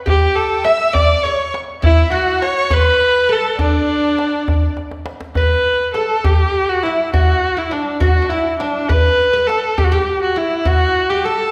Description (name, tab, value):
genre	Persian modal ensemble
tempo	68 BPM (dotted quarters)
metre	6/8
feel	straight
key	D dastgah mahur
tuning	A4 = 440 Hz
part	clear kamancheh	melody	0.1-11.5 s	D4 to E5	-18 LUFS	equal	none
part	oud	second line	0.1-11.5 s	D4 to E5	-25 LUFS	equal	none
part	warm symphonic violin section	second line	0.1-4.7 s	D5 to E6	-28 LUFS	equal	none
part	tombak	percussion	0.1-11.2 s	none	-20 LUFS	equal	none
room	wet recital hall reverb, RT60 1.4 s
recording	recorded in a church or concert hall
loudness	-16 LUFS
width	mono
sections	0.0-5.4 A section; 5.4-11.5 B section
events	drum fill 4.8-5.4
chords	none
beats	| 0.06 0.94 | 1.83 2.71 | 3.59 4.48 | 5.36 6.24 | 7.12 8.01 | 8.89 9.77 | 10.66